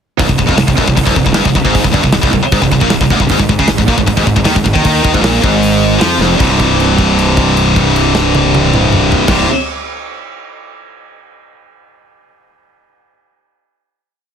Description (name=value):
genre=heavy metal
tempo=155 BPM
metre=4/4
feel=straight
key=C minor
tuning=A4 = 435 Hz
part: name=heavy high-gain guitar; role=riff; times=0.2-9.5 s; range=C2 to F3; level=-13 LUFS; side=left 8 dB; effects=distortion
part: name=heavy high-gain guitar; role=riff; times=0.2-9.5 s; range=C2 to F3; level=-15 LUFS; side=right 12 dB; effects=distortion
part: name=fuzz fingered electric bass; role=bass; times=0.2-9.4 s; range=C1 to F2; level=-16 LUFS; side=equal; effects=overdrive
part: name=tight metal drum kit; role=drums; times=0.2-9.4 s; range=crash cymbal, hi-hat, kick drum, snare drum, toms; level=-16 LUFS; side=equal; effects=none
room=studio reverb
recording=dense, heavily limited modern master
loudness=-9 LUFS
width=side -8 dB against mid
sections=0.2-6.4 riff; 6.4-9.5 final chord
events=drum fill 6.2; held note 6.4-9.3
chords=0.2 C5; 3.3 Ab5; 6.4 C5